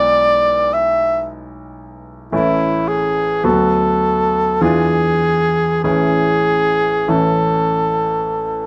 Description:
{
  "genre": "classical, romantic duo for cor anglais and grand piano",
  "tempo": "48-57 BPM",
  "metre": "3/4",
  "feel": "rubato",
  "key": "A major",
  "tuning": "A4 = 442 Hz",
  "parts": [
    { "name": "warm cor anglais", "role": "melody", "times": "0.0-8.7 s", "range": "E4 to E5", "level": "-18 LUFS", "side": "equal", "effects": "none" },
    { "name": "bright grand piano", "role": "accompaniment", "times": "0.0-8.7 s", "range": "A1 to F#4", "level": "-21 LUFS", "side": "equal", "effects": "none" }
  ],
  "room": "light reverb",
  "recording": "none",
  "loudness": "-16 LUFS",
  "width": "mono",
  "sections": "0.0-8.7 A section",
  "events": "none",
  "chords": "0.0 E7/B; 2.3 A; 3.4 Bm/D; 4.6 E7b9; 5.8 A"
}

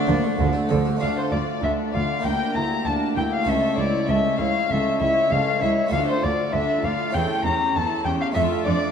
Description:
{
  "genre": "classical, baroque-style concerto movement with solo episodes",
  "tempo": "98 BPM",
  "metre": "4/4",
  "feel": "straight",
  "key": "D minor",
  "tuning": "A4 = 437 Hz",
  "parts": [
    { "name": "dark violin", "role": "melody", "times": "0.0-8.9 s", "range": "D4 to Bb5", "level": "-25 LUFS", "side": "left 2 dB", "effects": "none" },
    { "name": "warm chamber violin section", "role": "melody", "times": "0.0-8.9 s", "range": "F4 to D5", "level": "-32 LUFS", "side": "left 7 dB", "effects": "none" },
    { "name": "rich chamber violin section", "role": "second line", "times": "0.0-8.9 s", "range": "D4 to Bb5", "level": "-30 LUFS", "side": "left 2 dB", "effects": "none" },
    { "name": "dark chamber viola section", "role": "accompaniment", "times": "0.0-8.9 s", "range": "F3 to F4", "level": "-28 LUFS", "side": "equal", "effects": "none" },
    { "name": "harpsichord", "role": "accompaniment", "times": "0.0-8.9 s", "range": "C#2 to A4", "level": "-27 LUFS", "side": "right 1 dB", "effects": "none" },
    { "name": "warm chamber cello section", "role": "bass", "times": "0.1-8.7 s", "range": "C#2 to D3", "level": "-26 LUFS", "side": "right 2 dB", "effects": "none" },
    { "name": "warm studio double bass section", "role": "bass", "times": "0.1-0.8 s", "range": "D2", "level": "-26 LUFS", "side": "right 3 dB", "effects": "none" }
  ],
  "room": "moderate concert hall reverb, RT60 1.9 s",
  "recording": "dark, warm production, lossy compression artefacts",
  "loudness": "-20 LUFS",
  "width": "side -7 dB against mid",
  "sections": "0.0-1.0 A section; 1.0-8.9 B section",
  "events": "none",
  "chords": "0.0 Dm; 2.2 Em7b5/D; 3.5 A/C#; 5.9 Dm; 7.1 A7/E; 8.4 Dm/F"
}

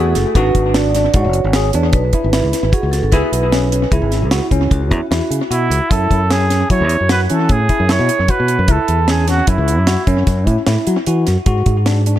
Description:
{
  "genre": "progressive instrumental, band music in an uneven meter",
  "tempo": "151 BPM",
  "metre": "7/4",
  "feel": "straight",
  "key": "F# minor",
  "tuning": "A4 = 440 Hz",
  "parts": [
    { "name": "vibraphone with medium mallets", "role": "second line", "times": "0.0-5.9 s", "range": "E4 to D5", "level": "-22 LUFS", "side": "right 2 dB", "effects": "tape echo" },
    { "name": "archtop guitar, miked and amplified", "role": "accompaniment", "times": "0.0-5.9 s", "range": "A3 to G#4", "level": "-24 LUFS", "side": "right 1 dB", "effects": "double-tracked left and right, tape echo" },
    { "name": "bell-like tine electric piano", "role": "arpeggios", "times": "0.0-12.2 s", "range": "C#4 to G#4", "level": "-20 LUFS", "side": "left 1 dB", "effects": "medium stereo tremolo, tape echo" },
    { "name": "fingered electric bass", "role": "bass", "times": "0.0-12.2 s", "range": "F#1 to F#3", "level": "-16 LUFS", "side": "equal", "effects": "none" },
    { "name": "deep reggae drum kit", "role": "drums", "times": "0.2-12.2 s", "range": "hi-hat, kick drum, snare drum", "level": "-18 LUFS", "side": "equal", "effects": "tape echo" },
    { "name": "mellow trumpet", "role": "melody", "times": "5.5-10.2 s", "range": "E4 to C#5", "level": "-18 LUFS", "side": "right 3 dB", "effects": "tape echo" }
  ],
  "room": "light reverb, studio ambience",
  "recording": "echo-heavy mix",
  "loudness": "-12 LUFS",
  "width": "side -12 dB against mid",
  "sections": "0.0-5.9 A section; 5.9-12.2 B section",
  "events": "none",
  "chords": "0.4 G#m7b5; 3.1 C#m7; 5.9 F#7(no3); 11.5 G#7(b5, no3)"
}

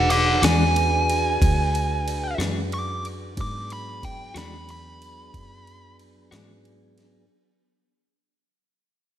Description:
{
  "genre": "slow blues",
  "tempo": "61 BPM (dotted quarters)",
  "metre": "12/8",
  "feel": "straight",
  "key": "E mixolydian",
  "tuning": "A4 = 440 Hz",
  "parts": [
    { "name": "dark smooth lead guitar", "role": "melody", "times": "0.0-6.0 s", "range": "F#5 to D6", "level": "-24 LUFS", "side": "right 1 dB", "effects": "overdrive, slapback echo" },
    { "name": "mellow tonewheel organ", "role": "sustained chords", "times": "0.0-7.3 s", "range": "F#3 to B4", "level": "-33 LUFS", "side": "right 1 dB", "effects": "slow rotary speaker" },
    { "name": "vintage muted fingered electric bass", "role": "bass", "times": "0.0-7.3 s", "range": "E1 to G#2", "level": "-26 LUFS", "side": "equal", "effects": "none" },
    { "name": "jungle sampler-style drum kit", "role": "drums", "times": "0.1-7.1 s", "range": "kick drum, ride cymbal, snare drum", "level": "-27 LUFS", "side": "equal", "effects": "none" },
    { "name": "clean electric guitar", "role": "accompaniment", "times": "0.4-6.5 s", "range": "E3 to F#4", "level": "-28 LUFS", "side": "left 4 dB", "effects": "harmonic tremolo, slapback echo" }
  ],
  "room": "moderate concert hall reverb, RT60 2.0 s, digital ambience",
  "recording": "big arena sound",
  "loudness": "-20 LUFS",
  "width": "side -11 dB against mid",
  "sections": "0.0-7.3 A section",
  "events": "fade-out 0.0-7.3; lead electric guitar solo 0.0-7.3",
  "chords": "0.0 E9"
}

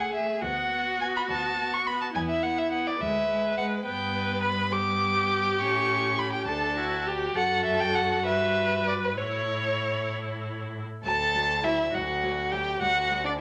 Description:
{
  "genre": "quick classical-period movement for string quartet",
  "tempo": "64-71 BPM (dotted quarters)",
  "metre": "6/8",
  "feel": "rubato",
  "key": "D major from 3.9 s",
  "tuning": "A4 = 440 Hz",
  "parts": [
    { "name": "rich violin", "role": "melody", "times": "0.0-13.3 s", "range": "B4 to D6", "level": "-29 LUFS", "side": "equal", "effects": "none" },
    { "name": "rich violin", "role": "second line", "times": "0.0-13.4 s", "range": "D4 to C#5", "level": "-32 LUFS", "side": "equal", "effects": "none" },
    { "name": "clear viola", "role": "accompaniment", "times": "0.0-13.2 s", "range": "F#3 to F#4", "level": "-38 LUFS", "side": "equal", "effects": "none" },
    { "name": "rich cello", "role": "bass", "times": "0.0-13.4 s", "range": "C#2 to A2", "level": "-37 LUFS", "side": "equal", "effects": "none" }
  ],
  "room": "moderate large studio reverb, RT60 0.8 s",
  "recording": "tape saturation",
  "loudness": "-27 LUFS",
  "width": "mono",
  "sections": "0.0-11.1 A section; 11.1-13.4 B section",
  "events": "none",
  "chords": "0.4 Bm/D; 2.2 E5; 3.0 E7/D; 3.9 G; 5.6 A; 6.5 D; 7.4 F#m; 8.3 Em/G; 9.2 A; 11.1 D; 12.8 Em9/D (rootless)"
}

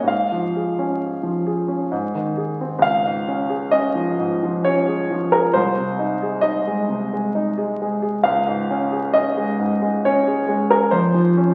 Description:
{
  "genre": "classical, romantic character piece for solo piano",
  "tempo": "66 BPM",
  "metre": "3/4",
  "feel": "rubato",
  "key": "Db major",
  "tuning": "A4 = 440 Hz",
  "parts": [
    { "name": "clear concert grand piano", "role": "solo", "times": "0.0-11.5 s", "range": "C2 to F5", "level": "-20 LUFS", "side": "equal", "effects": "none" }
  ],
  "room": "wet recital hall reverb, RT60 1.3 s",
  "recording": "very old 78 rpm record, vinyl crackle",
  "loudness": "-20 LUFS",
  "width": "mono",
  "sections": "0.0-2.8 A section; 2.8-11.5 B section",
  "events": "none",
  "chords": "0.1 Db/Ab; 1.9 Ab; 2.8 Db; 5.5 Ab/C; 8.2 Db; 10.9 Db/F"
}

